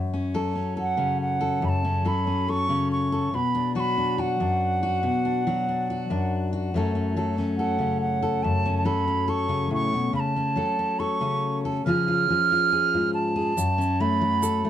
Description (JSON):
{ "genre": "acoustic folk duo or small band", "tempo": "70 BPM", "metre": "4/4", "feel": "straight", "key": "F# minor", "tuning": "A4 = 440 Hz", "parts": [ { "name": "fingerpicked steel-string acoustic guitar", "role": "accompaniment", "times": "0.0-14.7 s", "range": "F#2 to A4", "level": "-24 LUFS", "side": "left 2 dB", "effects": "none" }, { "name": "bright wooden flute", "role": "melody", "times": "0.8-14.7 s", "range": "F#5 to E#6", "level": "-25 LUFS", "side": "right 4 dB", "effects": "slapback echo" }, { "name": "egg shaker", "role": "percussion", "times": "13.6-14.6 s", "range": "none", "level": "-36 LUFS", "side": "right 7 dB", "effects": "none" } ], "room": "light reverb", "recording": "dark, warm production", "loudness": "-22 LUFS", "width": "side -10 dB against mid", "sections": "0.0-13.6 A section; 13.6-14.7 B section", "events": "none", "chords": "0.0 F#m; 3.3 Bm; 6.7 F#m; 10.2 F#m/C#; 11.9 C#; 13.6 F#m" }